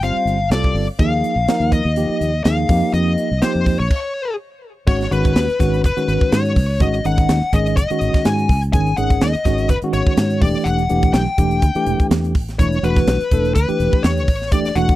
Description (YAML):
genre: electric jazz fusion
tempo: 124 BPM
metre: 4/4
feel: swing 55% on 16ths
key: F minor, G# minor from 4.9 s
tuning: A4 = 439 Hz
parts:
  - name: smooth overdriven lead guitar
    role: melody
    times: 0.0-15.0 s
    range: B4 to G#5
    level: -21 LUFS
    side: left 3 dB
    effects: none
  - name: tine electric piano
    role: accompaniment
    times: 0.0-15.0 s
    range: D#3 to C5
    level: -21 LUFS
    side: right 2 dB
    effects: medium stereo tremolo
  - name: fingered electric bass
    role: bass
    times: 0.0-15.0 s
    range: E1 to G#2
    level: -20 LUFS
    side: equal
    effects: none
  - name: crisp fusion drum kit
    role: drums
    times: 0.0-15.0 s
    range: crash cymbal, hi-hat, kick drum, snare drum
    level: -18 LUFS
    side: equal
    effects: none
room: little or no reverb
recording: dry, close 1970s-style studio recording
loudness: -15 LUFS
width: side -16 dB against mid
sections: 0.0-4.9 A section; 4.9-15.0 B section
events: stop 3.9-4.9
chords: 0.0 G9sus4; 1.0 Ebsus24; 2.7 F9sus4; 3.9 N.C.; 4.9 G#m7; 10.4 Em11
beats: 0.02 0.51 | 0.99 1.48 1.96 2.45 | 2.93 3.42 3.90 4.39 | 4.87 5.35 5.84 6.32 | 6.80 7.29 7.77 8.25 | 8.73 9.21 9.70 10.18 | 10.66 11.14 11.63 12.11 | 12.59 13.07 13.55 14.04 | 14.52